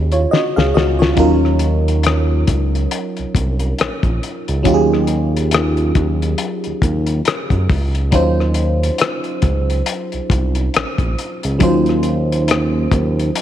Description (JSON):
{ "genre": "R&B, neo-soul", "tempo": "69 BPM", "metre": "4/4", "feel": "swing 58% on 16ths", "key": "Eb dorian", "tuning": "A4 = 435 Hz", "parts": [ { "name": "FM electric piano", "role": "accompaniment", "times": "0.0-13.4 s", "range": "Gb3 to F5", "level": "-19 LUFS", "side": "right 1 dB", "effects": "chorus, phaser" }, { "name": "smooth synth bass", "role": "bass", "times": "0.0-13.3 s", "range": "Bb1 to Gb2", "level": "-17 LUFS", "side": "equal", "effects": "none" }, { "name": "cloth-damped thuddy drum kit", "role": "drums", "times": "0.1-13.4 s", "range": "hi-hat, kick drum, rim click, snare drum", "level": "-19 LUFS", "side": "left 3 dB", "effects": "none" } ], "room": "light reverb, studio reverb", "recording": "1960s-style stereo", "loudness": "-14 LUFS", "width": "side -11 dB against mid", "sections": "0.0-1.2 A section; 1.2-13.4 B section", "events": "drum fill 0.3-1.2", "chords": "0.0 Ebm11; 1.2 Ebm9", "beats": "0.31 | 1.18 2.04 2.92 3.78 | 4.65 5.52 6.39 7.26 | 8.13 9.00 9.87 10.74 | 11.61 12.48 13.35" }